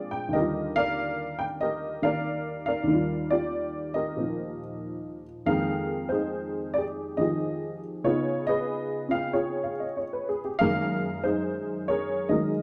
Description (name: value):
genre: solo jazz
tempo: 94 BPM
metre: 4/4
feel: swing 66% on 8ths, rubato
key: Eb major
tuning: A4 = 440 Hz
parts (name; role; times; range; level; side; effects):
- honky-tonk upright piano; solo; 0.0-12.6 s; Eb2 to G5; -28 LUFS; equal; none
room: wet large studio reverb, RT60 0.9 s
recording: band playing live in one room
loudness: -28 LUFS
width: mono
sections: 0.0-5.5 A section; 5.5-12.6 B section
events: none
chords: 0.3 Ebmaj9; 5.5 Fm11; 8.1 Db9; 10.6 Gb69